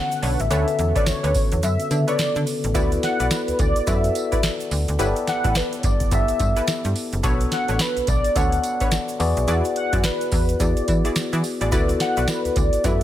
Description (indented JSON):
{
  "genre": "R&B, new jack swing",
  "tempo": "107 BPM",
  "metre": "4/4",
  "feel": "swing 61% on 16ths",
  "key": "D major",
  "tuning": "A4 = 439 Hz",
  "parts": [
    { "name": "warm velvety synth lead", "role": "melody", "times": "0.0-13.0 s", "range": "B4 to F#5", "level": "-25 LUFS", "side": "equal", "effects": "chorus" },
    { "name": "tine electric piano", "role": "accompaniment", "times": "0.0-13.0 s", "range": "C#3 to D5", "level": "-25 LUFS", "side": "left 4 dB", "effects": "phaser" },
    { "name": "booming analog drum machine", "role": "drums", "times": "0.1-13.0 s", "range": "hi-hat, kick drum, snare drum, tambourine", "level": "-24 LUFS", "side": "equal", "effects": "none" },
    { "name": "egg shaker", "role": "percussion", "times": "0.1-13.0 s", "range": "none", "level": "-40 LUFS", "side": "right 7 dB", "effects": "none" },
    { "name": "funky polysynth comp", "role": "stabs", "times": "0.2-13.0 s", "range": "D4 to D5", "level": "-30 LUFS", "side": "right 2 dB", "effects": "chorus" },
    { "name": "slap-like FM bass", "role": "bass", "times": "0.2-13.0 s", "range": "F#1 to E3", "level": "-23 LUFS", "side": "equal", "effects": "none" }
  ],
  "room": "digital ambience",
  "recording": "none",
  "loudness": "-19 LUFS",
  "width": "side -12 dB against mid",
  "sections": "0.0-2.8 A section; 2.8-13.0 B section",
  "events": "kick muted 1.6-2.8",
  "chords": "0.0 Bm9; 2.8 D69; 5.0 G69; 7.2 Bm9; 9.2 E9; 11.7 D69"
}